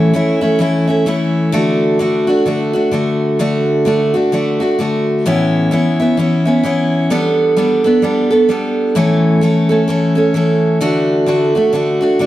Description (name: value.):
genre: country.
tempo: 129 BPM.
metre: 4/4.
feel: swing 60% on 8ths.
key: D major.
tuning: A4 = 440 Hz.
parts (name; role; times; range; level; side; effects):
picked steel-string acoustic guitar; solo; 0.0-12.3 s; A2 to A4; -12 LUFS; equal; none.
room: wet large studio reverb, RT60 1.3 s.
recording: none.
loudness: -12 LUFS.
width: side -14 dB against mid.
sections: 0.0-3.4 A section; 3.4-12.3 B section.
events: none.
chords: 0.0 A; 1.5 D; 5.2 Aadd9; 7.1 Gadd9; 9.0 A; 10.8 D.